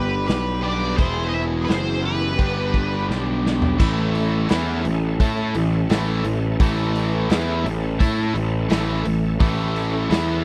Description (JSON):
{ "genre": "blues rock power trio and southern rock", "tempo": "85 BPM", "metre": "4/4", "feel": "straight", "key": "A mixolydian", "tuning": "A4 = 439 Hz", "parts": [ { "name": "octave-fuzz lead guitar", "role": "melody", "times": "0.0-3.1 s", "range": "B4 to E5", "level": "-28 LUFS", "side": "equal", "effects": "wah, distortion" }, { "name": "nasal lead guitar with a parked wah", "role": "second line", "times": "0.0-3.0 s", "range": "G4 to C5", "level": "-36 LUFS", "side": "equal", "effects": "overdrive" }, { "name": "bright tonewheel organ", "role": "sustained chords", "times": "0.0-10.4 s", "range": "G3 to A4", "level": "-35 LUFS", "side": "equal", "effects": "none" }, { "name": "cranked stack guitar", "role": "riff", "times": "0.0-10.4 s", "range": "A2 to A4", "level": "-27 LUFS", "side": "equal", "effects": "overdrive" }, { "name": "fuzz picked electric bass", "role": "bass", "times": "0.0-10.4 s", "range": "E1 to A2", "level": "-25 LUFS", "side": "equal", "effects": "overdrive" }, { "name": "raw garage drum kit", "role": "drums", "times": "0.3-10.3 s", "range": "crash cymbal, hi-hat, kick drum, snare drum, toms", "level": "-24 LUFS", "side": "equal", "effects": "none" } ], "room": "studio reverb", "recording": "dry, close 1970s-style studio recording", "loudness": "-21 LUFS", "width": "mono", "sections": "0.0-3.8 A section; 3.8-10.4 B section", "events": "drum fill 3.1-3.8", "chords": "0.0 G; 1.0 E; 2.4 G; 3.8 A" }